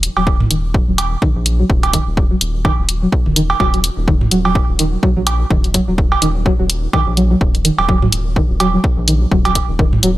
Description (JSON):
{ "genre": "minimal techno", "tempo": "126 BPM", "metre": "4/4", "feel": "swing 57% on 16ths", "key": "Eb minor", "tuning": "A4 = 441 Hz", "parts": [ { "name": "round analog bass", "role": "bass", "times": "0.0-10.2 s", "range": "Eb1 to Bb1", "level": "-19 LUFS", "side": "equal", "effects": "sidechain pumping" }, { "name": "electronic hi-hat", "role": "drums", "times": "0.0-10.1 s", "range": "none", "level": "-17 LUFS", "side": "left 1 dB", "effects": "none" }, { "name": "string-like resonator pluck", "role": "riff", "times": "0.2-10.1 s", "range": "Eb3 to Gb3", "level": "-19 LUFS", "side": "equal", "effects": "wide subtle chorus, sidechain pumping, digital delay" }, { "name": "electronic cowbell and toms", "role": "percussion", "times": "0.2-10.0 s", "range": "none", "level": "-19 LUFS", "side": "right 4 dB", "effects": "dub echo" }, { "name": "electronic kick drum", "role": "drums", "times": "0.3-9.9 s", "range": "none", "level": "-15 LUFS", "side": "equal", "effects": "none" } ], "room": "little or no reverb", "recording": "none", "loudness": "-12 LUFS", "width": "side -16 dB against mid", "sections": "0.0-10.2 A section", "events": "none", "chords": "0.0 Ebm" }